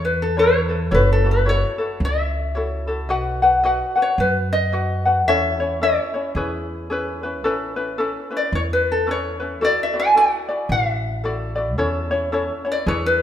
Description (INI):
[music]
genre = Hawaiian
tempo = 110 BPM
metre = 4/4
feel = swing 60% on 8ths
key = A major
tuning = A4 = 445 Hz
[part]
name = ukulele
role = melody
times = 0.0-13.2 s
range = A4 to G#5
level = -20 LUFS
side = left 1 dB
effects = none
[part]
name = ukulele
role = accompaniment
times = 0.0-13.2 s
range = C#4 to F#5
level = -22 LUFS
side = left 2 dB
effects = none
[part]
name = upright bass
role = bass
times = 0.0-13.2 s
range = F#1 to F#2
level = -23 LUFS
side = right 1 dB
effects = none
[sound]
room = wet recital hall reverb, RT60 1.7 s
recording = minimal, uncompressed stereo recording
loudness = -18 LUFS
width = side -10 dB against mid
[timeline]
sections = 0.0-13.2 A section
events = none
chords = 0.0 Aadd9; 0.9 F#m7; 3.1 B; 5.3 A/E; 6.4 E6; 7.4 Aadd9; 9.6 Dadd9; 11.8 A/E